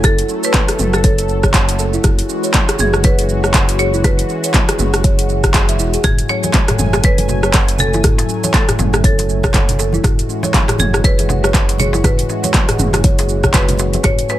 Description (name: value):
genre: afro house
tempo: 120 BPM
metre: 4/4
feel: swing 58% on 16ths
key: unclear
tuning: A4 = 440 Hz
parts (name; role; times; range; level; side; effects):
- marimba with hard mallets; melody; 0.0-14.4 s; G#4 to C#5; -22 LUFS; left 1 dB; dub echo
- warm analog pad; sustained chords; 0.0-14.4 s; E3 to G#5; -24 LUFS; equal; chorus, phaser, sidechain pumping
- kalimba; arpeggios; 0.0-14.4 s; C#4 to F#5; -22 LUFS; right 1 dB; sidechain pumping, dub echo
- smooth synth bass; bass; 0.0-14.2 s; E1 to F#1; -19 LUFS; equal; sidechain pumping
- deep house drum kit; drums; 0.0-14.4 s; handclaps, hi-hat, rim click, shaker, toms; -18 LUFS; equal; overdrive
- electronic kick drum; drums; 0.0-14.2 s; none; -14 LUFS; equal; none
- congas; percussion; 6.0-14.4 s; none; -24 LUFS; right 1 dB; none
- darbuka; percussion; 6.0-14.4 s; none; -24 LUFS; left 1 dB; none
room: small room ambience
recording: none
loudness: -12 LUFS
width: side -14 dB against mid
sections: 0.0-14.4 A section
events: none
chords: 0.0 F#m; 2.0 Eadd9/F#; 6.0 F#madd9; 10.0 Eadd9/F#